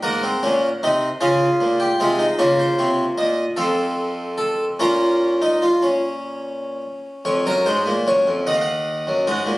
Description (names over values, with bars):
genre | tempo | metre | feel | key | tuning
classical, baroque-style 4-part fugue for harpsichord | 50 BPM (dotted quarters) | 6/8 | straight | Bb minor | A4 = 439 Hz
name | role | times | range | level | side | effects
harpsichord | solo | 0.0-9.6 s | Eb2 to Gb5 | -17 LUFS | equal | none
room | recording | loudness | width
moderate stone room reverb, RT60 1.0 s | recorded on a phone in the room, club reverb | -17 LUFS | side -18 dB against mid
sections
0.0-7.3 A section; 7.3-9.6 B section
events
none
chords
0.0 Ab7; 1.2 Db; 2.4 Bbm; 3.6 F; 4.8 Bbm; 7.3 Bbm/F; 8.5 Ebm